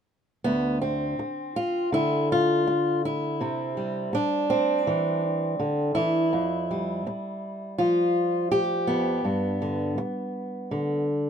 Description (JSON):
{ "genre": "folk, solo fingerstyle acoustic guitar", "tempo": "82 BPM", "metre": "4/4", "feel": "straight", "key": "D dorian", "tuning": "A4 = 439 Hz", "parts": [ { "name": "fingerpicked steel-string acoustic guitar", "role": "solo", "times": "0.4-11.3 s", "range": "D2 to G4", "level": "-23 LUFS", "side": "equal", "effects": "none" } ], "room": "light reverb", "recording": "minimal, uncompressed stereo recording", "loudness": "-23 LUFS", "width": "side -8 dB against mid", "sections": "0.5-11.3 A section", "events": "none", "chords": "0.5 Dm; 3.4 C; 6.3 Fsus2; 9.2 G" }